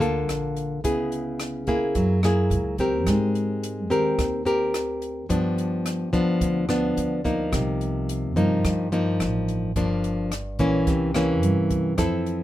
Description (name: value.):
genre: bossa nova.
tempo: 108 BPM.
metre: 4/4.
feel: straight.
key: unclear.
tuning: A4 = 441 Hz.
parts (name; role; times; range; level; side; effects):
nylon-string guitar; accompaniment; 0.0-12.4 s; G2 to A#4; -23 LUFS; left 1 dB; none.
upright bass; bass; 0.0-12.4 s; G1 to Ab2; -28 LUFS; right 1 dB; none.
compact cocktail drum kit; drums; 0.0-12.4 s; hi-hat, kick drum, rim click; -31 LUFS; right 1 dB; none.
room: light reverb.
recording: minimal, uncompressed stereo recording.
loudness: -21 LUFS.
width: side -14 dB against mid.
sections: 0.0-12.4 A section.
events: none.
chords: 0.0 Gm9 (rootless); 0.8 C#m7; 2.0 F#9; 3.1 Abmaj9; 5.3 G7; 7.5 Cm7; 9.8 Gm7; 10.9 C7b9.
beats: 0.29 | 0.85 1.41 1.96 2.52 | 3.08 3.63 4.19 4.74 | 5.30 5.86 6.41 6.97 | 7.53 8.08 8.64 9.20 | 9.75 10.31 10.87 11.43 | 11.98.